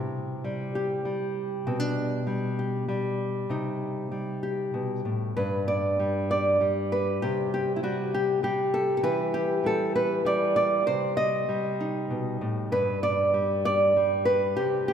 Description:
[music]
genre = folk, solo fingerstyle acoustic guitar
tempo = 98 BPM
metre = 3/4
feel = rubato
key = unclear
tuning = A4 = 440 Hz
[part]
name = nylon-string guitar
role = solo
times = 0.0-14.9 s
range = G2 to Eb5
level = -24 LUFS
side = equal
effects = none
[sound]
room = wet church reverb, RT60 3.2 s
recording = recorded in a church or concert hall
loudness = -24 LUFS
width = side -8 dB against mid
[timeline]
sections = 0.0-5.4 A section; 5.4-14.9 B section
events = none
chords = 0.0 C; 1.7 G/B; 3.5 Cm; 5.4 N.C.; 7.2 C5; 9.0 Em; 10.9 Cm; 12.7 N.C.

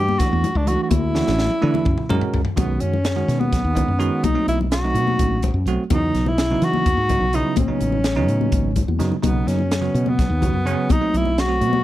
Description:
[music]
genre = electric jazz fusion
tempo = 252 BPM (eighths)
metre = 7/8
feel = straight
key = B mixolydian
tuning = A4 = 440 Hz
[part]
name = breathy tenor saxophone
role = melody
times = 0.0-11.8 s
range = B3 to G4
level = -23 LUFS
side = equal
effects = slapback echo
[part]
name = bell-like tine electric piano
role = accompaniment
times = 0.0-11.8 s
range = C#3 to A#4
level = -24 LUFS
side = right 5 dB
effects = medium stereo tremolo
[part]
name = woody fretless electric bass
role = bass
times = 0.0-11.8 s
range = G#1 to E3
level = -22 LUFS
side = equal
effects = none
[part]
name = congas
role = percussion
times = 0.1-11.8 s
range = none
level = -27 LUFS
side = left 8 dB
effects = none
[part]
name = crisp fusion drum kit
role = drums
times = 0.2-11.7 s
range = hi-hat, kick drum, snare drum, toms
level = -24 LUFS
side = equal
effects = none
[sound]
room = small room ambience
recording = none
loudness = -17 LUFS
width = side -14 dB against mid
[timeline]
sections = 0.0-2.6 A section; 2.6-11.8 B section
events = drum fill 1.1-2.6, 8.9-9.2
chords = 0.0 Em9; 0.9 Dadd9; 1.9 F#7; 2.6 Badd9; 4.2 B7b9; 5.9 E69; 7.6 Amaj9; 9.2 Badd9; 10.9 B7b9

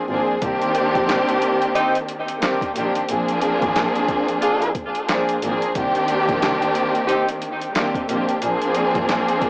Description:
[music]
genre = hip hop, boom-bap hip-hop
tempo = 90 BPM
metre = 4/4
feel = swing 60% on 16ths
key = C minor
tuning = A4 = 440 Hz
[part]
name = warm studio string section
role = accompaniment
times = 0.0-9.5 s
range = Eb3 to Ab4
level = -22 LUFS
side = equal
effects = cassette tape, high-pass filter, low-pass filter
[part]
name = muted double bass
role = bass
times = 0.1-9.2 s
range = Ab1 to C2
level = -33 LUFS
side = equal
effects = none
[part]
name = boom bap sampler-style drum kit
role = drums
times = 0.4-9.5 s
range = handclaps, hi-hat, kick drum, snare drum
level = -29 LUFS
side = equal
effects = cassette tape
[part]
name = warm horn section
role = stabs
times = 1.7-7.3 s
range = C4 to Ab4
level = -25 LUFS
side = equal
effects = high-pass filter, low-pass filter, cassette tape, tape echo
[sound]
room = light reverb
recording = home recording on cassette, vinyl crackle, small speaker sound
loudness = -21 LUFS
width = mono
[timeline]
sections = 0.0-9.5 A section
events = break 0.0-0.4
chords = 0.4 Cm7; 3.1 Bb7; 5.8 Cm7; 8.4 Bb7

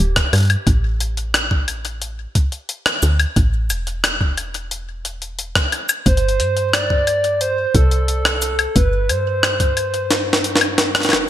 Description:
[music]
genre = IDM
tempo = 89 BPM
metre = 4/4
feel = straight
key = A minor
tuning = A4 = 440 Hz
[part]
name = warbly nostalgic lead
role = melody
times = 0.0-0.3, 6.1-11.1 s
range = G4 to D5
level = -21 LUFS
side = right 1 dB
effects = chorus, digital delay
[part]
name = woody FM bass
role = bass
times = 0.0-11.3 s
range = D1 to G2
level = -20 LUFS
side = equal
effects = none
[part]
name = electronic kick drum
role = drums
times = 0.2-9.7 s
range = none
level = -17 LUFS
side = equal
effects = none
[part]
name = jungle sampler-style drum kit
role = drums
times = 0.2-11.3 s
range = hi-hat, rim click, shaker, snare drum, woodblock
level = -18 LUFS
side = left 1 dB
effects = gated reverb, ping-pong delay
[sound]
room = moderate plate reverb, RT60 1.7 s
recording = bright 1980s-style digital production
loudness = -15 LUFS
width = side -12 dB against mid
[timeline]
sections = 0.0-11.3 A section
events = kick drops out 10.1-11.3; drum fill 10.1-11.3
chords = 0.0 G5; 0.7 A5; 6.1 Gsus4

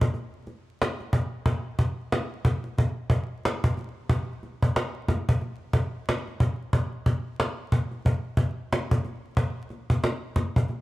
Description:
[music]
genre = hip hop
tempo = 91 BPM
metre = 4/4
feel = swing 61% on 16ths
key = none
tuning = none
[part]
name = cajon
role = drums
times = 0.0-10.8 s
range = none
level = -24 LUFS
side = equal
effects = none
[sound]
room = light reverb, small room ambience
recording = dark, warm production, vinyl crackle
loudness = -25 LUFS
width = side -18 dB against mid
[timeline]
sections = 0.0-10.8 A section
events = none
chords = none

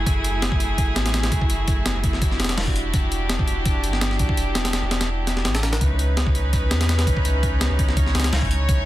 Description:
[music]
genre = drum and bass, jungle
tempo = 167 BPM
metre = 4/4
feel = swing 53% on 16ths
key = unclear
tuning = A4 = 440 Hz
[part]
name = rich chamber string section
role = sustained chords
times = 0.0-8.9 s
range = A3 to C#5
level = -26 LUFS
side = right 1 dB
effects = none
[part]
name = saturated sub bass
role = bass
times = 0.0-8.9 s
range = E1 to E2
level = -23 LUFS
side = equal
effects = none
[part]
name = breakbeat sampler-style drum kit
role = drums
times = 0.1-8.8 s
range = hi-hat, kick drum, snare drum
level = -22 LUFS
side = equal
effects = none
[sound]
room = digital ambience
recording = dense, heavily limited modern master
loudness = -19 LUFS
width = side -15 dB against mid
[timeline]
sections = 0.0-8.9 A section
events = none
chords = 0.0 F#m9; 2.2 Em9; 5.8 C#m9

